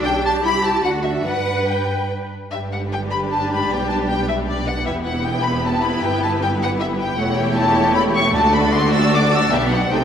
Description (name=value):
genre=quick classical-period movement for string orchestra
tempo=153 BPM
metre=3/4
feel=rubato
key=G major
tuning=A4 = 440 Hz
part: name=warm symphonic violin section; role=second line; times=0.0-10.0 s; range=F#4 to B5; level=-24 LUFS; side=left 3 dB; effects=none
part: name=rich symphonic viola section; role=accompaniment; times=0.0-10.0 s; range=G3 to B4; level=-22 LUFS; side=right 1 dB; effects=none
part: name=rich studio cello section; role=bass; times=0.0-10.0 s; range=D2 to B4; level=-26 LUFS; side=right 2 dB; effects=none
part: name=warm symphonic double bass section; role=bass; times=0.0-10.0 s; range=E1 to G2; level=-26 LUFS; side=right 2 dB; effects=none
part: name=warm symphonic violin section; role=melody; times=0.1-10.0 s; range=D5 to E6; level=-22 LUFS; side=left 2 dB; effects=none
room=wet scoring stage reverb, RT60 1.8 s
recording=none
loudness=-16 LUFS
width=side -8 dB against mid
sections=0.0-2.5 A section; 2.5-10.0 A section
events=none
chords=0.0 G/B; 0.4 Am7/C; 0.8 D; 1.3 G; 3.7 G/B; 4.9 Em; 6.0 Em/G; 7.2 A7/E; 8.3 D; 9.5 G/B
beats=| 0.05 0.45 0.85 | 1.26 1.68 2.10 | 2.51 2.91 3.30 | 3.69 4.08 4.47 | 4.86 5.24 5.63 | 6.02 6.41 6.79 | 7.17 7.56 7.95 | 8.34 8.73 9.12 | 9.52 9.91